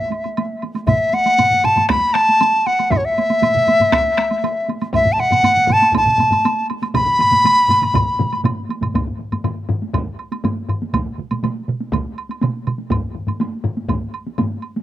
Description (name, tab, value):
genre	japanese traditional, taiko drum ensemble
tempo	120 BPM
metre	4/4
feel	straight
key	unclear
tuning	A4 = 438 Hz
part	bright large dizi	melody	0.0-8.4 s	C#5 to B5	-14 LUFS	equal	slapback echo
part	taiko ensemble	percussion	0.1-14.8 s	none	-24 LUFS	right 2 dB	none
part	woodblock	percussion	0.1-14.7 s	none	-28 LUFS	right 6 dB	slapback echo
part	taiko ensemble	percussion	0.9-14.5 s	none	-23 LUFS	left 2 dB	none
part	taiko ensemble	percussion	0.9-12.8 s	none	-24 LUFS	right 4 dB	none
part	taiko ensemble	percussion	0.9-14.0 s	none	-25 LUFS	right 1 dB	none
room	little or no reverb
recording	recorded outdoors, with no room sound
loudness	-15 LUFS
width	side -13 dB against mid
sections	0.0-8.9 A section; 8.9-14.8 B section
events	speeding up 0.0-14.8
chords	none